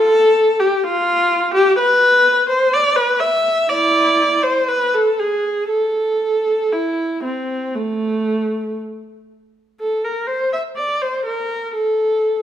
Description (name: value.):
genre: classical, baroque-style suite movement for unaccompanied viola.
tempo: 58-64 BPM.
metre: 4/4.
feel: rubato.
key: A minor.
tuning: A4 = 439 Hz.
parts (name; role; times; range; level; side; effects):
warm viola; solo; 0.0-12.4 s; A3 to E5; -15 LUFS; equal; none.
room: moderate recital hall reverb, RT60 1.5 s.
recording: minimal, uncompressed stereo recording.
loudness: -15 LUFS.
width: side -10 dB against mid.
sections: 0.0-9.8 A section; 9.8-12.4 A section.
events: none.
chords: none.